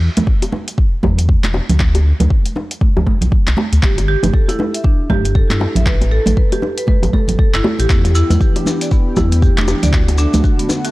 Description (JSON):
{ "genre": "afro house", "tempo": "118 BPM", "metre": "4/4", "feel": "swing 60% on 16ths", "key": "E minor", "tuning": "A4 = 440 Hz", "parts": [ { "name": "dark detuned saw bass", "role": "bass", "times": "0.0-10.4 s", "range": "E1 to G2", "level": "-15 LUFS", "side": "equal", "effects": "sidechain pumping" }, { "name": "deep house drum kit", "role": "drums", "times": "0.2-10.9 s", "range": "handclaps, hi-hat", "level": "-24 LUFS", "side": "equal", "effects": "none" }, { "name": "bongos", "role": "percussion", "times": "0.2-10.8 s", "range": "none", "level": "-22 LUFS", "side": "left 3 dB", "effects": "none" }, { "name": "congas", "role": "percussion", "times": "0.2-10.8 s", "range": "none", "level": "-21 LUFS", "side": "right 3 dB", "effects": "none" }, { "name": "electronic kick drum", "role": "drums", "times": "0.3-10.6 s", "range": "none", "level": "-14 LUFS", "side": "equal", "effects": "none" }, { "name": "marimba with medium hard mallets", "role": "arpeggios", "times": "3.8-10.9 s", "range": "B3 to E5", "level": "-21 LUFS", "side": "equal", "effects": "sidechain pumping, tape echo" }, { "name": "warm analog pad", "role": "sustained chords", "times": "7.9-10.9 s", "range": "D3 to G4", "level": "-25 LUFS", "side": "equal", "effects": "chorus, sidechain pumping" }, { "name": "maracas", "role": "percussion", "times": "7.9-10.9 s", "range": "none", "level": "-28 LUFS", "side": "left 3 dB", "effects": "none" } ], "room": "little or no reverb", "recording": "dry, gritty hardware recording, cassette tape", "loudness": "-12 LUFS", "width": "side -19 dB against mid", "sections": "0.0-10.9 A section", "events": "none", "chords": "0.0 N.C.; 3.8 G5; 5.9 A5; 7.9 Em; 9.9 D" }